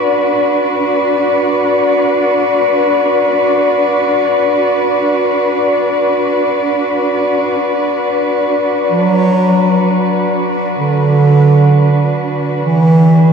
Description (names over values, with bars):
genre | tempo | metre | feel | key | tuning
dark ambient drone | free time | none | none | unclear | A4 = 436 Hz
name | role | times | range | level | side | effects
muted symphonic cello section | sustained chords | 0.0-13.3 s | D4 to E5 | -12 LUFS | left 1 dB | none
mellow bass clarinet | melody | 8.9-13.3 s | D3 to F#3 | -10 LUFS | right 2 dB | ping-pong delay
room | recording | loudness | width
wet cathedral reverb, RT60 7.0 s | in a vast, echoing space | -10 LUFS | side -6 dB against mid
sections
0.0-13.3 A section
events
fade-out on cello section 0.0-13.3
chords
0.0 Bm